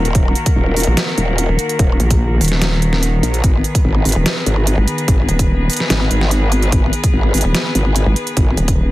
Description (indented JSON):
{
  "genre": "heavy wobble dubstep",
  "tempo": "146 BPM",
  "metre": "4/4",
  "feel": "half-time",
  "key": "unclear",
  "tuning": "A4 = 435 Hz",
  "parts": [
    { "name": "clear studio string section", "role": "sustained chords", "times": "0.0-8.9 s", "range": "Eb3 to Cb5", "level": "-22 LUFS", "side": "left 1 dB", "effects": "sidechain pumping, low-pass filter" },
    { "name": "growl bass", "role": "bass", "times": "0.0-8.6 s", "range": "Eb1 to Bb1", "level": "-16 LUFS", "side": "equal", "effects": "chorus, overdrive" },
    { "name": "dubstep drum kit", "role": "drums", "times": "0.1-8.8 s", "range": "hi-hat, snare drum", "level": "-20 LUFS", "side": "right 1 dB", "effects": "studio reverb" },
    { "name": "electronic kick drum", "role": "drums", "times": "0.1-8.8 s", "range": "none", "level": "-15 LUFS", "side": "equal", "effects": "studio reverb" },
    { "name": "vowel-sweep wobble bass", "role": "bass", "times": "0.9-8.9 s", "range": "Eb1 to Bb1", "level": "-15 LUFS", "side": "equal", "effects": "chorus, overdrive" }
  ],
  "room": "little or no reverb",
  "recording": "dense, heavily limited modern master",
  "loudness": "-13 LUFS",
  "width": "side -17 dB against mid",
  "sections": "0.0-8.9 A section",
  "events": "none",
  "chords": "0.0 Ebm; 3.4 Abm"
}